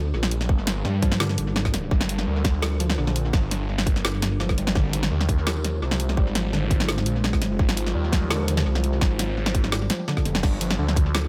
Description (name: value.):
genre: half-time drum and bass.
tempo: 169 BPM.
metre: 4/4.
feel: half-time.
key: G phrygian.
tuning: A4 = 440 Hz.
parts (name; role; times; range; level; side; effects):
deep dark ambient pad; sustained chords; 0.2-11.3 s; G3 to C5; -35 LUFS; equal; chorus, built-in reverb, sidechain pumping.
warbly dusty pluck; arpeggios; 0.0-11.3 s; D3 to G3; -33 LUFS; equal; chorus, tape echo.
phased detuned saw bass; bass; 0.0-11.3 s; F1 to G2; -27 LUFS; equal; phaser.
drum and bass drum kit; drums; 0.2-11.2 s; crash cymbal, hi-hat, snare drum; -29 LUFS; equal; tape echo.
electronic kick drum; drums; 0.5-11.0 s; none; -24 LUFS; equal; none.
room: light reverb, digital ambience.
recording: echo-heavy mix.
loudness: -23 LUFS.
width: mono.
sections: 0.0-11.3 A section.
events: none.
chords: 0.0 Gm; 4.8 Ab6; 10.4 Gm.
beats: 0.14 | 0.49 0.85 1.20 1.56 | 1.91 2.27 2.62 2.98 | 3.33 3.69 4.04 4.40 | 4.75 5.11 5.46 5.82 | 6.17 6.53 6.88 7.24 | 7.59 7.95 8.30 8.66 | 9.01 9.37 9.72 10.08 | 10.43 10.79 11.14.